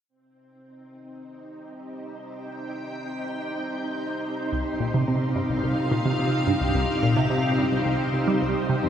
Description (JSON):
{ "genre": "ambient, sequencer-driven space music", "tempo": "108 BPM", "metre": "4/4", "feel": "straight", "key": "C minor", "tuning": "A4 = 440 Hz", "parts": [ { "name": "string machine, full ensemble", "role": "sustained chords", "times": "0.8-8.9 s", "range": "C4 to G5", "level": "-27 LUFS", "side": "equal", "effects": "ensemble chorus, shimmer reverb" }, { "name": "wind-like tuned noise texture", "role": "texture", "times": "1.7-8.9 s", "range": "Eb4", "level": "-33 LUFS", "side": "right 1 dB", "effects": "built-in reverb, shimmer reverb" }, { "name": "tight sequenced synth", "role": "riff", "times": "4.5-8.9 s", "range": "C2 to G3", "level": "-24 LUFS", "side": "equal", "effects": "chorus, phaser, tape echo" } ], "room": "wet echo chamber reverb, RT60 2.4 s", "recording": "echo-heavy mix", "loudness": "-22 LUFS", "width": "side -9 dB against mid", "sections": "0.1-8.9 A section", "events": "fade-in on string machine 0.1-8.9; fade-in on synth texture 0.1-8.9", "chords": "0.1 Cm" }